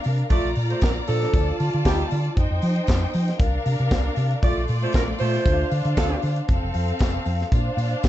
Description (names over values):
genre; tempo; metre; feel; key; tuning
disco; 116 BPM; 4/4; straight; Bb major; A4 = 440 Hz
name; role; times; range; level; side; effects
clear studio string section; second line; 0.0-8.1 s; A3 to Bb5; -28 LUFS; left 1 dB; none
modern studio drum kit; drums; 0.0-8.1 s; handclaps, hi-hat, kick drum, snare drum; -23 LUFS; equal; none
tambourine; percussion; 0.0-8.1 s; none; -46 LUFS; left 7 dB; none
hollow-body short-scale fingered electric bass; bass; 0.1-8.1 s; F1 to F3; -24 LUFS; equal; none
warm horn section; stabs; 0.3-6.2 s; F3 to D5; -26 LUFS; right 2 dB; none
room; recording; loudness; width
light reverb; dark, warm production, nothing above 7.9 kHz; -20 LUFS; side -13 dB against mid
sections
0.0-8.1 A section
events
none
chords
0.3 Bbmaj7; 1.3 Dm; 2.4 F5; 3.4 C9sus4; 4.4 Bbmaj7; 5.5 Dm7; 6.5 F; 7.5 Bbadd9